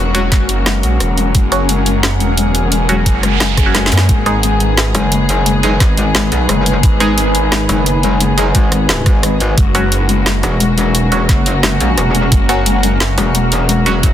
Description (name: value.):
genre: dark technical drum and bass.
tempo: 175 BPM.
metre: 4/4.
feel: straight.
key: unclear.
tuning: A4 = 441 Hz.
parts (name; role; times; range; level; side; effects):
warm studio string section; sustained chords; 0.0-14.1 s; C#3 to G#4; -20 LUFS; left 1 dB; sidechain pumping.
phased detuned saw bass; bass; 0.0-13.2 s; E1 to F#2; -16 LUFS; equal; phaser, overdrive, sidechain pumping.
granular cloud pad; texture; 0.0-14.1 s; C#4 to B5; -22 LUFS; equal; built-in reverb, sidechain pumping.
felt-muted upright piano; arpeggios; 0.1-14.0 s; G#3 to G#4; -21 LUFS; left 8 dB; sidechain pumping, low-pass filter, tape echo.
band-passed chord stab; stabs; 0.1-13.9 s; F#3 to G#4; -20 LUFS; right 2 dB; phaser, cassette tape, tape echo.
drum and bass drum kit; drums; 0.1-14.1 s; hi-hat, rim click, snare drum; -17 LUFS; equal; overdrive.
electronic kick drum; drums; 0.3-14.1 s; none; -12 LUFS; equal; overdrive.
noise sweep and zap; sound effects; 3.1-4.1 s; none; -23 LUFS; right 7 dB; none.
metallic wobble bass; bass; 4.9-14.1 s; E1 to B1; -15 LUFS; equal; chorus.
room: light reverb.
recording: dense, heavily limited modern master.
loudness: -11 LUFS.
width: side -11 dB against mid.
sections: 0.0-14.1 A section.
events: noise sweep 3.1-4.1; drum fill 3.7-4.1.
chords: 0.0 F#; 4.1 G#m; 9.6 F#.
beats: 0.32 0.66 1.00 | 1.35 1.69 2.03 2.38 | 2.72 3.06 3.40 3.75 | 4.09 4.43 4.78 5.12 | 5.46 5.80 6.15 6.49 | 6.83 7.18 7.52 7.86 | 8.20 8.55 8.89 9.23 | 9.58 9.92 10.26 10.60 | 10.95 11.29 11.63 11.98 | 12.32 12.66 13.00 13.35 | 13.69 14.03.